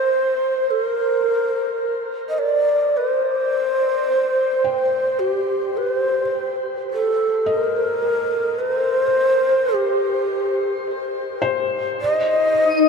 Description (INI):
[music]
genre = ambient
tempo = 53 BPM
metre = 4/4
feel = straight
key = C dorian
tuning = A4 = 440 Hz
[part]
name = breathy mellow long shakuhachi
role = melody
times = 0.0-12.9 s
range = G4 to Eb5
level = -18 LUFS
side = equal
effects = shimmer reverb, ping-pong delay
[part]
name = felt-muted upright piano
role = arpeggios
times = 0.0-12.9 s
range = C5 to G5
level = -29 LUFS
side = left 4 dB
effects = shimmer reverb, ping-pong delay
[part]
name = twinkling granular texture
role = texture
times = 12.5-12.9 s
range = Eb4 to Eb7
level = -19 LUFS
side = left 5 dB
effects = built-in reverb
[sound]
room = wet huge ambient reverb, RT60 7.8 s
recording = dark, warm production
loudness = -18 LUFS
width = side -5 dB against mid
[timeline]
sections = 0.0-12.9 A section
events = fade-in on felt piano 0.0-12.9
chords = 0.0 Cm; 12.0 N.C.